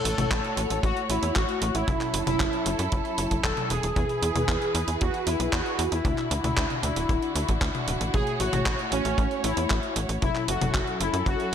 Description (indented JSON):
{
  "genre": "italo disco",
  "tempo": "115 BPM",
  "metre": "4/4",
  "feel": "straight",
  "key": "A major",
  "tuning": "A4 = 440 Hz",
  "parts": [
    { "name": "analog synth brass", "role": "melody", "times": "0.0-11.5 s", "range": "C#4 to A4", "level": "-28 LUFS", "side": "left 1 dB", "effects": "chorus, tape echo" },
    { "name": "rich studio string section", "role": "sustained chords", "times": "0.0-11.5 s", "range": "D3 to C#5", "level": "-32 LUFS", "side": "right 1 dB", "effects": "none" },
    { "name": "tight sequencer bass", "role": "bass", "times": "0.1-11.4 s", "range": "D1 to F#2", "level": "-30 LUFS", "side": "equal", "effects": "none" },
    { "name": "clean 12-bit digital drum machine", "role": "drums", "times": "0.1-11.5 s", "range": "handclaps, hi-hat, toms", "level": "-30 LUFS", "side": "equal", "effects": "small room ambience, gated reverb" },
    { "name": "kick drum", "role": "drums", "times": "0.3-11.4 s", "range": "none", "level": "-28 LUFS", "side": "equal", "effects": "small room ambience" }
  ],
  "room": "light reverb, studio ambience",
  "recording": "none",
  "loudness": "-23 LUFS",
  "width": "side -8 dB against mid",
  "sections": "0.0-11.5 A section",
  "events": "none",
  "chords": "0.0 A6; 1.9 F#m7; 4.0 E; 6.0 Dadd9; 8.1 A6; 10.2 F#m7"
}